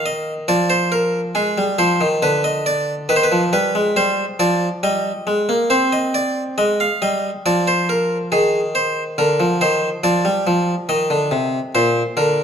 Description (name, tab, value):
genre	classical, baroque-style two-part invention for harpsichord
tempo	69 BPM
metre	4/4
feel	straight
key	C minor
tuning	A4 = 441 Hz
part	harpsichord	solo	0.0-12.4 s	Bb2 to F5	-16 LUFS	equal	none
room	moderate recital hall reverb, RT60 1.8 s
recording	close, detailed microphones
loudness	-16 LUFS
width	side -7 dB against mid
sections	0.0-5.7 A section; 5.7-12.4 B section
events	none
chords	0.5 Dm7b5/F (rootless); 2.2 G7/D; 4.0 Cm; 7.5 Fm; 9.2 Bb/D; 10.9 Eb5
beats	0.49 1.36 | 2.23 3.10 3.97 4.84 | 5.71 6.58 7.45 8.32 | 9.18 10.04 10.89 11.74